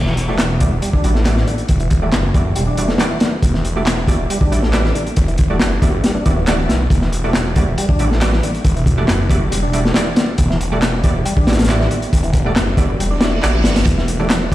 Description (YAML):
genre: breakbeat, breaks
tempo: 138 BPM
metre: 4/4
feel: straight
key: E minor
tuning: A4 = 440 Hz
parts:
  - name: phased detuned saw bass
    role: bass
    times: 0.0-14.5 s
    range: D1 to B1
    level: -18 LUFS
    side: equal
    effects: phaser
  - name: percussive tonewheel organ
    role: riff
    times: 0.1-14.3 s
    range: D3 to E4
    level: -24 LUFS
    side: equal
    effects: overdrive, chorus vibrato, slow rotary speaker, tube saturation, ping-pong delay
  - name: crunchy breakbeat drum kit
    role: drums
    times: 0.1-14.5 s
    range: hi-hat, kick drum, snare drum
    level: -16 LUFS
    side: equal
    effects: none
  - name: orchestra-hit-like synth stab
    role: stabs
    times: 0.3-14.5 s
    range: G3 to D5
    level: -24 LUFS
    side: right 2 dB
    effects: built-in reverb, ping-pong delay
  - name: electronic handclaps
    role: drums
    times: 0.4-14.4 s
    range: none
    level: -27 LUFS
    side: equal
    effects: none
  - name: reverse cymbal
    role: sound effects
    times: 13.1-13.9 s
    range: none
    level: -28 LUFS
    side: right 4 dB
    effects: none
  - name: congas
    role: percussion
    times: 14.1-14.5 s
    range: none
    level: -24 LUFS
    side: right 2 dB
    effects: none
room: light reverb, small room ambience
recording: played on a big sound system in a bare room, large studio reverb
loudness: -13 LUFS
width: side -15 dB against mid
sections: 0.0-14.5 A section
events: kick drops out 13.0-13.9; reverse cymbal 13.1-13.9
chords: 0.0 Em9